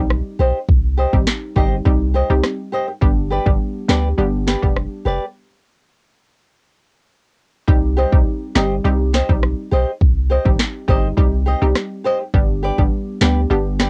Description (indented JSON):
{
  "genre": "dancehall",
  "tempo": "103 BPM",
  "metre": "4/4",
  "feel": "straight",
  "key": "C harmonic minor",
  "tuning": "A4 = 441 Hz",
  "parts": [
    { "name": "analog pluck", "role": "accompaniment", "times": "0.0-13.9 s", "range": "G3 to G4", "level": "-25 LUFS", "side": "equal", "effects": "chorus, sidechain pumping, cassette tape" },
    { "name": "punchy sub bass", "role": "bass", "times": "0.0-13.9 s", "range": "F1 to D2", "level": "-21 LUFS", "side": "equal", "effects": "none" },
    { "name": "afro-pop drum kit", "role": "drums", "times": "0.1-13.9 s", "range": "kick drum, rim click, snare drum", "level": "-19 LUFS", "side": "equal", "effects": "cassette tape" },
    { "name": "flamenco guitar", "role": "arpeggios", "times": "0.4-13.9 s", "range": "G4 to Eb5", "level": "-23 LUFS", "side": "equal", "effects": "cassette tape" }
  ],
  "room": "little or no reverb",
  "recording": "home recording on cassette",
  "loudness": "-18 LUFS",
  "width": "mono",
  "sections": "0.0-13.9 A section",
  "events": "break 5.3-7.7",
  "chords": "0.0 Cm; 3.0 G; 7.7 Cm; 12.3 G"
}